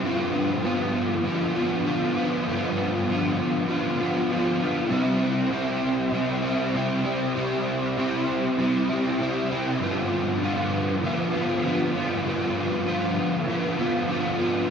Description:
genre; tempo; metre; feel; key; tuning
rock; 98 BPM; 4/4; straight; G mixolydian; A4 = 440 Hz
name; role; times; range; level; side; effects
crunchy overdriven guitar; solo; 0.0-14.7 s; G2 to F4; -22 LUFS; equal; ensemble chorus
room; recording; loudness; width
wet lush hall reverb, RT60 2.9 s; dreamy mix soaked in reverb; -22 LUFS; side -7 dB against mid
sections
0.0-14.7 A section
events
none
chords
0.0 G7; 4.9 C; 9.8 G7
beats
| 0.03 0.64 1.25 1.86 | 2.47 3.08 3.69 4.31 | 4.92 5.53 6.14 6.75 | 7.36 7.98 8.59 9.20 | 9.81 10.42 11.03 11.65 | 12.26 12.87 13.48 14.10

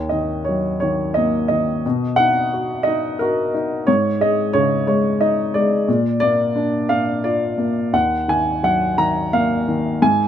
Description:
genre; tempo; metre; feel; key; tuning
classical, lyrical solo piano; 58 BPM (dotted quarters); 6/8; rubato; Eb minor; A4 = 442 Hz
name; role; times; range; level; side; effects
warm upright piano; solo; 0.0-10.3 s; Eb2 to Bb5; -16 LUFS; equal; none
room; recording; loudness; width
light reverb; close, detailed microphones; -16 LUFS; side -9 dB against mid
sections
0.0-10.3 A section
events
none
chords
0.0 Ebm; 1.8 B; 3.9 Absus4; 5.9 Bb; 7.9 Ebmadd9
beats
0.82 | 1.85 2.87 | 3.88 4.88 | 5.88 6.90 | 7.94 8.98 | 10.02

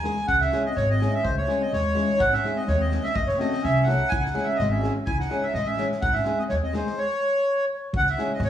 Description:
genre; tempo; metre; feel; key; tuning
balkan folk, Balkan wedding band; 125 BPM; 2/4; swing 55% on 16ths; C# harmonic minor; A4 = 440 Hz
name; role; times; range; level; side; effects
accordion; melody; 0.0-8.5 s; B#4 to G#5; -24 LUFS; right 1 dB; slapback echo
flamenco guitar; accompaniment; 0.0-8.3 s; G#3 to A4; -30 LUFS; left 3 dB; slapback echo
upright bass; bass; 0.0-8.5 s; F#1 to D#2; -27 LUFS; equal; none
loose indie drum kit; percussion; 0.0-8.5 s; kick drum, snare drum; -33 LUFS; equal; none
mellow clarinet; second line; 0.3-7.0 s; G#3 to E4; -31 LUFS; left 1 dB; slapback echo
room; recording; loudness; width
moderate lush hall reverb, RT60 1.9 s, studio ambience; live gig heard through the venue's PA, club reverb, small room ambience; -21 LUFS; side -10 dB against mid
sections
0.3-7.9 A section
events
none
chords
0.3 C#m; 2.2 G#; 3.2 F#m; 4.1 C#m; 6.0 G#; 7.0 N.C.; 7.9 C#m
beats
| 0.28 0.76 | 1.24 1.72 | 2.20 2.68 | 3.15 3.63 | 4.11 4.59 | 5.07 5.55 | 6.03 6.50 | 6.98 7.46 | 7.93 8.41

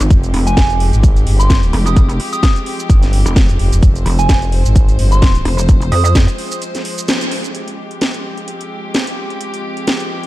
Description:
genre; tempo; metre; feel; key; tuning
bass house; 129 BPM; 4/4; swing 56% on 16ths; F minor; A4 = 440 Hz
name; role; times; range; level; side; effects
warm chamber string section; sustained chords; 0.0-10.3 s; F3 to C5; -24 LUFS; left 1 dB; sidechain pumping, low-pass filter
pulsing pluck wobble bass; bass; 0.0-6.3 s; F1 to F2; -14 LUFS; equal; chorus, overdrive, sidechain pumping
house drum kit; drums; 0.0-10.3 s; hi-hat, shaker, snare drum; -21 LUFS; equal; none
growling FM bass; bass; 0.1-5.4 s; F1 to Ab1; -13 LUFS; equal; tube saturation, sidechain pumping
electronic kick drum; drums; 0.1-6.3 s; none; -11 LUFS; equal; none
soft synth bell; melody; 0.5-6.1 s; Ab5 to Eb6; -21 LUFS; right 3 dB; chorus, phaser, digital delay
room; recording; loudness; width
digital ambience; dark, warm production; -11 LUFS; side -16 dB against mid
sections
0.0-7.5 A section; 7.5-10.3 B section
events
drop 0.0-7.5; break 6.6-7.5; band accent 7.1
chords
0.0 Fmadd9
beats
| 0.10 0.57 1.03 1.50 | 1.97 2.43 2.90 3.36 | 3.83 4.29 4.76 5.22 | 5.69 6.15 6.62 7.08 | 7.55 8.01 8.48 8.94 | 9.41 9.87

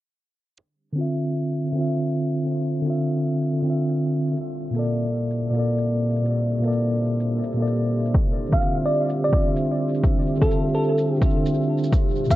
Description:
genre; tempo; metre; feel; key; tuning
future garage; 127 BPM; 4/4; swing 61% on 16ths; D minor; A4 = 444 Hz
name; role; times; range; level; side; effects
dark analog pad; sustained chords; 0.6-12.4 s; Bb2 to E5; -30 LUFS; right 1 dB; chorus, sidechain pumping
shaker; drums; 0.6-12.4 s; none; -48 LUFS; right 4 dB; vintage 12-bit sampler grit, tape echo
mellow tine electric piano; accompaniment; 0.9-12.4 s; Bb2 to E5; -22 LUFS; equal; fast stereo tremolo, sidechain pumping, tape echo
electronic kick drum; drums; 8.1-12.4 s; none; -20 LUFS; equal; overdrive, vintage 12-bit sampler grit
bell-like FM electric piano; melody; 8.5-12.4 s; A4 to F5; -25 LUFS; right 1 dB; chorus, vintage 12-bit sampler grit, analog delay
room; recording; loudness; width
light reverb; echo-heavy mix, low-pass filter; -20 LUFS; side -15 dB against mid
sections
0.6-12.4 A section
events
fade-in on analog synth pad 0.6-12.4; filter sweep 0.6-12.4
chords
0.6 Dm9; 4.4 Bbmaj7; 8.1 Dm9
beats
| 0.59 1.06 1.53 2.00 | 2.48 2.95 3.42 3.90 | 4.37 4.84 5.31 5.79 | 6.26 6.73 7.20 7.67 | 8.15 8.62 9.09 9.56 | 10.04 10.51 10.98 11.45 | 11.93

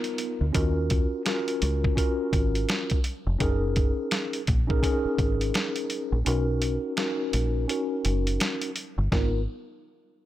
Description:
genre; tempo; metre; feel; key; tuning
hip hop, boom-bap hip-hop; 84 BPM; 4/4; swing 60% on 16ths; G# dorian; A4 = 440 Hz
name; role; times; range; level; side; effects
mellow tine electric piano; accompaniment; 0.0-9.4 s; B3 to A#4; -28 LUFS; equal; medium stereo tremolo, cassette tape, high-pass filter, low-pass filter
dusty soul sampler-style drum kit; drums; 0.0-9.3 s; hi-hat, kick drum, snare drum; -27 LUFS; equal; none
deep dub fingered electric bass; bass; 0.4-9.5 s; E#1 to D#2; -26 LUFS; equal; none
room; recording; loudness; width
digital ambience; none; -24 LUFS; side -14 dB against mid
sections
0.0-9.1 A section; 9.1-10.3 B section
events
filter sweep on tine electric piano 0.0-9.1; kick muted 6.3-9.1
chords
0.0 G#m69 (rootless); 0.5 D#m9; 3.4 F#69; 6.3 Bmaj9; 9.1 G#m69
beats
| 0.55 1.26 1.98 2.69 | 3.40 4.12 4.83 5.55 | 6.26 6.98 7.69 8.40 | 9.12

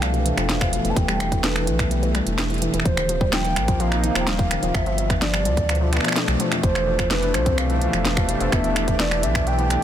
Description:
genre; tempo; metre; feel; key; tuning
IDM; 127 BPM; 4/4; straight; F lydian; A4 = 440 Hz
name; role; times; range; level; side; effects
warbly nostalgic lead; melody; 0.0-9.8 s; B4 to A5; -26 LUFS; right 1 dB; chorus, ping-pong delay
warm analog pad; sustained chords; 0.0-9.8 s; B2 to G4; -27 LUFS; equal; chorus
warbly dusty pluck; arpeggios; 0.0-9.8 s; F2 to C4; -27 LUFS; left 3 dB; chorus, vintage 12-bit sampler grit, tape echo
warm sub bass; bass; 0.0-9.8 s; Eb1 to D2; -24 LUFS; equal; none
glitchy drum kit; drums; 0.0-9.8 s; finger snaps, hi-hat, snare drum; -25 LUFS; right 1 dB; overdrive
electronic kick drum; drums; 0.6-9.4 s; none; -23 LUFS; equal; overdrive
room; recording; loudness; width
light reverb; dense, heavily limited modern master; -18 LUFS; side -10 dB against mid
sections
0.0-9.8 A section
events
none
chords
0.0 F; 1.0 Em; 2.9 Ebadd9; 4.7 Gadd9; 6.6 F; 8.5 Em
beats
0.02 0.49 | 0.96 1.44 1.91 2.38 | 2.85 3.33 3.80 4.27 | 4.75 5.22 5.69 6.16 | 6.63 7.11 7.58 8.05 | 8.52 9.00 9.47

